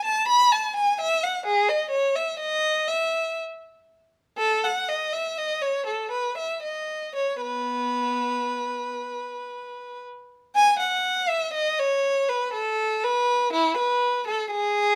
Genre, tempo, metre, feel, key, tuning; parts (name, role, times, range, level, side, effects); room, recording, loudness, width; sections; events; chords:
classical, baroque-style suite movement for unaccompanied violin; 55-65 BPM; 3/4; rubato; A4 = 438 Hz
rich violin; solo; 0.0-15.0 s; B3 to B5; -25 LUFS; equal
moderate stone room reverb, RT60 1.0 s; -25 LUFS; mono
0.0-10.6 A section; 10.6-15.0 B section